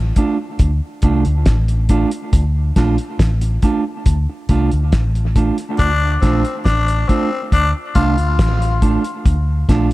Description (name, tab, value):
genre	dub reggae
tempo	69 BPM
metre	4/4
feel	straight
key	D minor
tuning	A4 = 441 Hz
part	vintage muted fingered electric bass	bass	0.0-9.9 s	A1 to D2	-16 LUFS	equal	none
part	mellow electric guitar	accompaniment	0.2-9.9 s	A3 to F4	-21 LUFS	right 4 dB	tape echo
part	cloth-damped thuddy drum kit	drums	0.2-9.9 s	hi-hat, kick drum, snare drum	-16 LUFS	equal	none
part	growling tenor saxophone	second line	5.8-8.8 s	C4 to F4	-20 LUFS	left 4 dB	tape echo
room	light reverb, small room ambience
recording	echo-heavy mix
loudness	-14 LUFS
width	side -18 dB against mid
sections	0.0-9.9 A section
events	break 0.0-5.8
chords	0.0 Dm